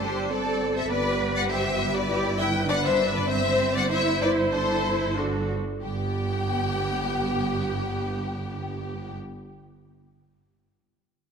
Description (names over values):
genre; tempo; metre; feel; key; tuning
quick classical-period movement for string orchestra; 90-102 BPM; 4/4; straight; G major; A4 = 437 Hz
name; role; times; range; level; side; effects
rich studio violin section; melody; 0.0-9.1 s; G4 to G5; -30 LUFS; left 5 dB; none
rich studio violin section; second line; 0.0-9.2 s; A4 to G5; -30 LUFS; left 4 dB; none
dark studio viola section; accompaniment; 0.0-9.2 s; B3 to D5; -29 LUFS; right 2 dB; none
dark studio double bass section; bass; 0.0-9.1 s; G1; -31 LUFS; right 2 dB; none
rich studio cello section; bass; 0.0-9.2 s; G2 to B4; -32 LUFS; right 4 dB; none
room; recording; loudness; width
moderate concert hall reverb, RT60 2.2 s; none; -23 LUFS; side -6 dB against mid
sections
0.0-5.8 A section; 5.8-8.4 B section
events
slowing down 0.0-5.8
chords
0.0 D5/G; 0.9 G; 3.3 D7/G; 5.8 G